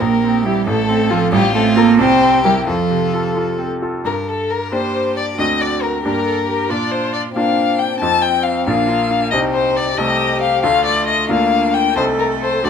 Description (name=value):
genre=quick classical-period movement for piano quartet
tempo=91 BPM (dotted quarters)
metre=6/8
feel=straight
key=F major, G minor from 4.1 s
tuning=A4 = 439 Hz
part: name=rich violin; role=melody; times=0.0-12.7 s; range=F4 to A5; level=-18 LUFS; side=left 6 dB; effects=none
part: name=rich violin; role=second line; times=0.0-12.7 s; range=A3 to Eb5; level=-22 LUFS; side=left 3 dB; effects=none
part: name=warm cello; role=second line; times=0.0-12.7 s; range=F3 to A4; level=-20 LUFS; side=right 8 dB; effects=none
part: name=bright grand piano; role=accompaniment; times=0.0-12.7 s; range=A1 to C5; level=-20 LUFS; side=equal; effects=none
room=light reverb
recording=none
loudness=-14 LUFS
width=side -7 dB against mid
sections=0.0-4.1 A section; 4.1-12.7 B section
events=none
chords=0.0 C7/Bb; 0.7 F/A; 2.0 C7; 2.7 F; 4.1 Gm; 5.4 D7; 6.0 Gm; 6.7 Bb; 8.0 F5; 8.7 Bb; 9.3 Cm; 10.0 Adim/C; 10.6 Dm; 11.3 Bb/D; 12.0 Adim/C